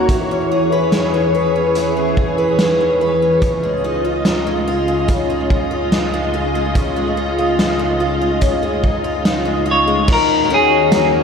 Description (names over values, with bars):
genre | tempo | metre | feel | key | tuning
dream pop | 72 BPM | 4/4 | straight | unclear | A4 = 441 Hz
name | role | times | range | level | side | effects
soft string machine | sustained chords | 0.0-11.2 s | C#2 to D#5 | -19 LUFS | right 1 dB | ensemble chorus
picked twelve-string acoustic guitar | arpeggios | 0.0-11.2 s | C#3 to B4 | -18 LUFS | left 2 dB | lush chorus, tape echo
raw garage drum kit | drums | 0.1-11.1 s | crash cymbal, hi-hat, kick drum, snare drum, tambourine | -20 LUFS | right 1 dB | none
clean electric guitar | melody | 9.7-11.2 s | G#4 to C#5 | -14 LUFS | equal | tape echo
room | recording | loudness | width
moderate echo chamber reverb, RT60 2.4 s | echo-heavy mix | -14 LUFS | side -6 dB against mid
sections
0.0-10.1 A section; 10.1-11.2 B section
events
none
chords
0.1 E6; 3.4 C#add9; 10.1 D#m7